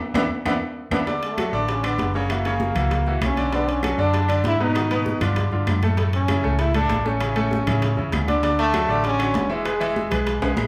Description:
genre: latin, salsa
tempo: 196 BPM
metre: 4/4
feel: straight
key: unclear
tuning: A4 = 442 Hz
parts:
  - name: bright baby grand piano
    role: accompaniment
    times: 0.1-10.7 s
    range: A2 to E5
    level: -27 LUFS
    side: equal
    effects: none
  - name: hollow-body short-scale fingered electric bass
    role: bass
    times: 0.1-10.7 s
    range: E1 to A2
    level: -27 LUFS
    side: equal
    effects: none
  - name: brilliant trombone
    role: melody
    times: 0.2-10.6 s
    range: G#3 to E4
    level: -28 LUFS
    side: equal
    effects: none
  - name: bongos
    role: percussion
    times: 0.2-10.7 s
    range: none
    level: -36 LUFS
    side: equal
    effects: none
  - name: claves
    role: percussion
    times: 0.2-10.7 s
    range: none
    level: -37 LUFS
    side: equal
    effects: none
  - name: congas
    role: percussion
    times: 0.2-10.7 s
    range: none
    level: -33 LUFS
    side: equal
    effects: none
  - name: timbales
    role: percussion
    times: 0.2-10.5 s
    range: none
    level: -35 LUFS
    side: equal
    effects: none
room: wet large studio reverb, RT60 0.9 s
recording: band playing live in one room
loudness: -22 LUFS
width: mono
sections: 0.0-1.1 A section; 1.1-10.7 B section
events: band accent 0.0-1.1; drum fill 10.4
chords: 0.0 E5; 1.1 Dmaj7; 2.3 F#7; 3.5 Bm; 4.8 G#m7; 5.4 Gsus2; 6.0 F#m; 7.2 A; 8.4 Dmaj7; 9.7 E

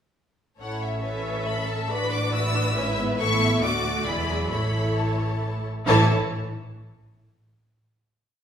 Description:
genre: quick classical-period movement for string orchestra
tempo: 130-141 BPM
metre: 3/4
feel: straight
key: A major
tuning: A4 = 441 Hz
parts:
  - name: rich symphonic violin section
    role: melody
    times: 0.6-6.1 s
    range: E5 to E6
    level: -28 LUFS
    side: left 2 dB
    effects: none
  - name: rich studio violin section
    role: second line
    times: 0.6-6.1 s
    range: F#4 to E5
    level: -29 LUFS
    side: left 1 dB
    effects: none
  - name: rich studio viola section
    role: accompaniment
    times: 0.6-6.1 s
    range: E3 to A4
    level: -28 LUFS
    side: right 1 dB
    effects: none
  - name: dark studio cello section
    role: bass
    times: 0.6-6.1 s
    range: D2 to A2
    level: -29 LUFS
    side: right 1 dB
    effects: none
  - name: warm studio double bass section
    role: bass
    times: 0.6-6.1 s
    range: E1 to D2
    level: -30 LUFS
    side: right 1 dB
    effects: none
room: wet recital hall reverb, RT60 1.3 s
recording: recorded in a church or concert hall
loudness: -22 LUFS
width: side -8 dB against mid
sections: 0.6-5.9 A section; 5.9-7.2 final chord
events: none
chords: 0.6 A; 1.9 E7/A; 3.2 A; 3.6 D; 4.1 E7; 4.5 A; 5.9 A5

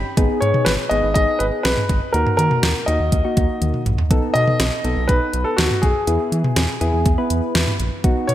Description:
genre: synth-pop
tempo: 122 BPM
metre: 4/4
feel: straight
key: unclear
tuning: A4 = 440 Hz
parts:
  - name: soft electric-piano-like synth keys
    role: accompaniment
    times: 0.0-8.3 s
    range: A#3 to B5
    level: -24 LUFS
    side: left 1 dB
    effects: chorus
  - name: round analog bass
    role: bass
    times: 0.0-8.3 s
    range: G#1 to E3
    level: -22 LUFS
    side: equal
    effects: none
  - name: pop drum kit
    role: drums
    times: 0.2-8.3 s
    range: hi-hat, kick drum, snare drum, toms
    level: -20 LUFS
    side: equal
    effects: overdrive
  - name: warm grand piano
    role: melody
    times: 0.4-8.3 s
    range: F#4 to D#5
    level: -21 LUFS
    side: equal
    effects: digital delay
room: moderate lush hall reverb, RT60 2.1 s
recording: bright 1980s-style digital production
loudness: -16 LUFS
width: side -13 dB against mid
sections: 0.0-8.3 A section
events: synth keys fill 0.0; drum fill 3.6-4.1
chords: 0.2 G#m; 2.1 D#m; 4.1 B7; 6.1 E

